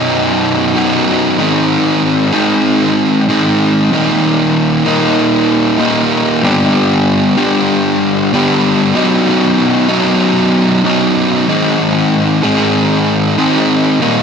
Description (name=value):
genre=rock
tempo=95 BPM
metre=4/4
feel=straight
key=unclear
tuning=A4 = 442 Hz
part: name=fuzz guitar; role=solo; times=0.0-14.2 s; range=B1 to G#4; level=-10 LUFS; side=equal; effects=distortion
room=wet lush hall reverb, RT60 1.9 s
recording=big arena sound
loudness=-10 LUFS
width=side -6 dB against mid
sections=0.0-14.2 A section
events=none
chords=0.0 B; 1.4 G#; 3.9 D#; 6.4 G; 9.0 B; 11.5 G#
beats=0.13 0.75 | 1.38 2.01 2.64 3.27 | 3.90 4.53 5.16 5.79 | 6.43 7.06 7.69 8.32 | 8.95 9.58 10.21 10.85 | 11.48 12.11 12.74 13.37 | 14.00